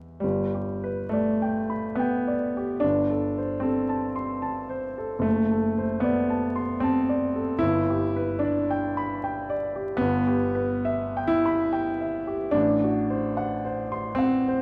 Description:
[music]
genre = classical, romantic nocturne for solo piano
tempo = 60-79 BPM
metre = 3/4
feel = rubato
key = G major, E minor from 10.0 s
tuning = A4 = 440 Hz
[part]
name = warm grand piano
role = solo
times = 0.0-14.6 s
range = F#1 to C6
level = -26 LUFS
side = equal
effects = none
[sound]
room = moderate recital hall reverb, RT60 1.5 s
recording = dark, warm production, vinyl crackle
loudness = -26 LUFS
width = mono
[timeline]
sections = 0.2-14.6 A section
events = none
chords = 0.2 G; 2.8 Am7/G; 5.2 D7/F#; 7.6 G; 10.0 Em/G; 12.5 F#dim/A

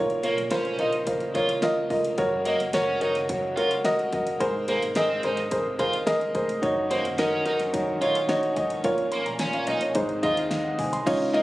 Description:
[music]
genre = piano-driven pop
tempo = 108 BPM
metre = 4/4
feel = straight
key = unclear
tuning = A4 = 440 Hz
[part]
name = warm upright piano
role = accompaniment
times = 0.0-11.4 s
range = Ab2 to C6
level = -23 LUFS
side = equal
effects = none
[part]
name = rich studio string section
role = sustained chords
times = 0.0-11.4 s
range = C3 to F4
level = -38 LUFS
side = left 1 dB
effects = none
[part]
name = upright bass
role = bass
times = 0.0-11.4 s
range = F1 to F2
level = -40 LUFS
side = equal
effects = none
[part]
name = pop drum kit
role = drums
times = 0.1-11.4 s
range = crash cymbal, hi-hat, kick drum, ride cymbal, snare drum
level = -34 LUFS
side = equal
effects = none
[part]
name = overdriven electric guitar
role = riff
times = 0.2-11.4 s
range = Bb3 to F4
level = -30 LUFS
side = right 2 dB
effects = none
[sound]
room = light reverb, small room ambience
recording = recorded on a phone in the room, studio reverb, compression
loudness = -22 LUFS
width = side -17 dB against mid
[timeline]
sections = 0.0-11.1 A section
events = none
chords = 0.0 Bbm; 2.2 Gb; 4.4 Abadd9; 6.6 Ebm7/Gb; 8.8 Bbm; 10.0 Ab

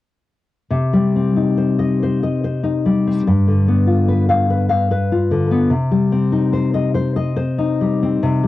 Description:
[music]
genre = romantic piece for solo classical guitar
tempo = 72 BPM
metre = 3/4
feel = rubato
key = C minor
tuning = A4 = 439 Hz
[part]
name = nylon-string guitar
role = solo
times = 0.7-8.5 s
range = G2 to F5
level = -15 LUFS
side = left 2 dB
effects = cassette tape
[sound]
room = moderate booth ambience, RT60 0.3 s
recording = home recording on cassette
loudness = -15 LUFS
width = side -15 dB against mid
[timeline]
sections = 0.7-8.5 A section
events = none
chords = 0.7 Cm; 3.3 G7; 5.7 Cm

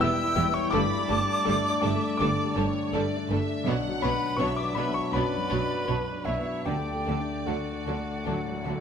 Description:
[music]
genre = cinematic, emotional film score for orchestra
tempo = 74-84 BPM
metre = 4/4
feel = rubato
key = unclear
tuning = A4 = 440 Hz
[part]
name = clear symphonic violin section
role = melody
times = 0.0-8.8 s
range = B4 to B5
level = -37 LUFS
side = left 2 dB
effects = none
[part]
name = bright silver concert flute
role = second line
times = 0.0-8.8 s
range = E5 to E6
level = -33 LUFS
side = left 1 dB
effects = none
[part]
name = mellow cor anglais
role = second line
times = 0.0-8.8 s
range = E4 to E5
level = -34 LUFS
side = right 4 dB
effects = none
[part]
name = warm studio violin section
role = second line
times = 0.0-8.7 s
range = D4 to C#5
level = -36 LUFS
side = left 2 dB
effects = none
[part]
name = dark concert grand piano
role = accompaniment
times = 0.0-8.8 s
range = B1 to E6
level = -31 LUFS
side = left 1 dB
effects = none
[part]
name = rich symphonic viola section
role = accompaniment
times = 0.0-8.8 s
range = D3 to B3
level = -36 LUFS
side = right 2 dB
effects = none
[part]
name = dark French horn section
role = sustained chords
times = 0.0-8.8 s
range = F#3 to E4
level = -33 LUFS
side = left 4 dB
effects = none
[part]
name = concert harp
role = arpeggios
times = 0.0-8.8 s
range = G2 to G4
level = -38 LUFS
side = left 11 dB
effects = none
[part]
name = clear symphonic cello section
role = bass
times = 0.0-8.7 s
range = E2 to D3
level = -34 LUFS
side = right 3 dB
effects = none
[part]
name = rich studio double bass section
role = bass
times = 0.0-8.7 s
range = E1 to D2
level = -34 LUFS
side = right 4 dB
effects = none
[sound]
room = moderate scoring stage reverb, RT60 1.6 s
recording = none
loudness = -25 LUFS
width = side -7 dB against mid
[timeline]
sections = 0.0-8.8 A section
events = none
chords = 0.0 Em; 0.7 Gsus2; 3.7 Bmadd9; 6.7 D

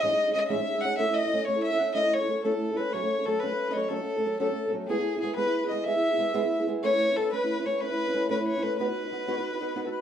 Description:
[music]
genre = celtic folk, Celtic slide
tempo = 123 BPM (dotted quarters)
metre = 12/8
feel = straight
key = unclear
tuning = A4 = 439 Hz
[part]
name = dark fiddle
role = melody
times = 0.0-10.0 s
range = G#4 to F#5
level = -28 LUFS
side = left 1 dB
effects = none
[part]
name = accordion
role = second line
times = 0.0-10.0 s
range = G#4 to F#5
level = -35 LUFS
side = left 4 dB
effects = none
[part]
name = fingerpicked old ladder-braced acoustic guitar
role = accompaniment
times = 0.0-10.0 s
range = G#2 to B4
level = -29 LUFS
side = right 2 dB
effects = none
[sound]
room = wet small room reverb, RT60 0.5 s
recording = none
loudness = -25 LUFS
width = side -9 dB against mid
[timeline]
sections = 0.0-10.0 A section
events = none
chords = 0.0 C#madd9/G#; 1.0 A; 2.9 F#m; 4.9 E/G#; 6.8 Aadd9; 8.8 B

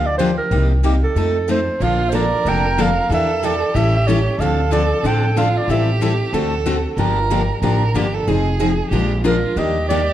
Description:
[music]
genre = acoustic string swing (jazz manouche)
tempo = 186 BPM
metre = 4/4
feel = swing 59% on 8ths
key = Bb major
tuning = A4 = 444 Hz
[part]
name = breathy clarinet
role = melody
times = 0.0-6.0, 9.3-10.1 s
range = G4 to G5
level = -21 LUFS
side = right 2 dB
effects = none
[part]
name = picked steel-string acoustic guitar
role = accompaniment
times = 0.0-10.0 s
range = C3 to Bb4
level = -21 LUFS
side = left 5 dB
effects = none
[part]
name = picked steel-string acoustic guitar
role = accompaniment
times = 0.0-10.0 s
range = C3 to Bb4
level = -27 LUFS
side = right 6 dB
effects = none
[part]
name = upright bass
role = bass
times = 0.0-10.1 s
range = F1 to F2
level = -20 LUFS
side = equal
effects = none
[part]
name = rich violin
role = second line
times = 1.8-10.1 s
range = F4 to Bb4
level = -23 LUFS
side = right 4 dB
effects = none
[sound]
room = moderate recital hall reverb, RT60 1.7 s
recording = dark, warm production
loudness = -15 LUFS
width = side -12 dB against mid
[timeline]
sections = 0.0-1.8 A section; 1.8-10.1 B section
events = none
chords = 0.0 Gm7; 0.5 Cm7; 1.2 F7; 1.8 Bbmaj7; 3.1 Em7b5; 3.8 A7; 4.4 Dm7; 5.7 Am7; 6.3 D7; 7.0 Gm7; 8.3 Fm7; 8.9 Bb7; 9.6 Ebmaj7

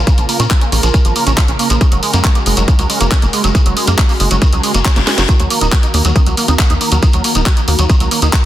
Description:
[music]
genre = uplifting trance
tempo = 138 BPM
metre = 4/4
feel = straight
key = Eb minor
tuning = A4 = 440 Hz
[part]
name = lush unison pad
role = sustained chords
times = 0.0-8.5 s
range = Db3 to Bb4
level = -21 LUFS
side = right 1 dB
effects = chorus, phaser, sidechain pumping
[part]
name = tight sequencer bass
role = bass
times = 0.0-8.3 s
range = Eb1 to Bb2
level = -15 LUFS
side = equal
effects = sidechain pumping
[part]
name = liquid acid bass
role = arpeggios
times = 0.1-8.4 s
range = Db3 to Gb4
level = -19 LUFS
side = right 4 dB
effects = ensemble chorus, vintage 12-bit sampler grit, sidechain pumping, digital delay
[part]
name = electronic kick drum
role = drums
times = 0.1-8.4 s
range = none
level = -12 LUFS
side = equal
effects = none
[part]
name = house drum kit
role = drums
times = 0.1-8.4 s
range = congas, handclaps, hi-hat, snare drum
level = -17 LUFS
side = equal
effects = sidechain pumping on hats, sidechain pumping on perc
[part]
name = shekere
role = percussion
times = 0.1-8.4 s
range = none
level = -24 LUFS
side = left 2 dB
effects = none
[part]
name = reverse cymbal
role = sound effects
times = 4.6-5.3 s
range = none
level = -23 LUFS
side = left 9 dB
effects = none
[sound]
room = light reverb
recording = dense, heavily limited modern master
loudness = -10 LUFS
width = side -13 dB against mid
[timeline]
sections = 0.0-8.5 A section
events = reverse cymbal 4.6-5.3; drum fill 5.0-5.3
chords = 0.0 Bbm; 1.8 Gbadd9; 5.3 Ebm

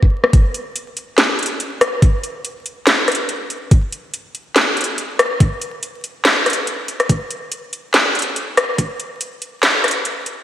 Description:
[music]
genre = dubstep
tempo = 142 BPM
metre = 4/4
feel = swing 55% on 16ths, half-time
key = none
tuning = none
[part]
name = electronic kick drum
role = drums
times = 0.0-8.9 s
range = none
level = -12 LUFS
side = equal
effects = none
[part]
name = garage drum kit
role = drums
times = 0.2-10.4 s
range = hi-hat, rim click, snare drum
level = -16 LUFS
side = equal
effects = high-pass filter on snare, high-pass filter on hats
[sound]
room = wet lush hall reverb, RT60 1.9 s, digital ambience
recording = dreamy mix soaked in reverb, vinyl crackle, high-pass filter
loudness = -15 LUFS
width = side -12 dB against mid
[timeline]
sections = 0.3-10.4 A section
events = build-up 0.3-10.4; filter sweep 0.3-10.4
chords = none

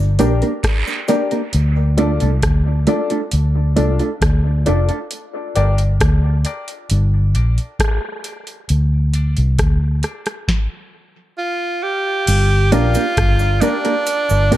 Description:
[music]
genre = dub reggae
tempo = 67 BPM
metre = 4/4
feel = straight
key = G minor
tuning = A4 = 440 Hz
[part]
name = vintage muted fingered electric bass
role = bass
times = 0.0-14.6 s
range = F1 to D2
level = -15 LUFS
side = equal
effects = none
[part]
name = mellow electric guitar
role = accompaniment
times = 0.2-5.0, 12.7-14.6 s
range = A3 to Bb4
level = -21 LUFS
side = right 4 dB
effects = high-pass filter, dub echo
[part]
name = warm upright piano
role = stabs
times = 0.2-14.6 s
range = D4 to D5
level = -24 LUFS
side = left 4 dB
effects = high-pass filter, dub echo
[part]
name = booming analog drum machine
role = drums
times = 0.2-14.6 s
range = crash cymbal, hi-hat, kick drum, rim click, snare drum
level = -20 LUFS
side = equal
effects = none
[part]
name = cabasa and guiro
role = percussion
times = 0.2-1.3, 12.3-14.6 s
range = none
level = -30 LUFS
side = right 4 dB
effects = dub echo
[part]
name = edgy tenor saxophone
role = melody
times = 11.4-14.6 s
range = D4 to G4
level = -18 LUFS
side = right 2 dB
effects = dub echo
[sound]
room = light reverb, digital ambience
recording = dark, warm production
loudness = -15 LUFS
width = side -14 dB against mid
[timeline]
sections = 0.0-12.3 A section; 12.3-14.6 B section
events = part muted 1.5-12.3; filter sweep 1.5-12.3; break 5.1-12.3; stop 10.5-12.3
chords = 0.0 Gm; 1.5 Dm; 5.1 Gm; 8.7 Dm; 12.3 Gm

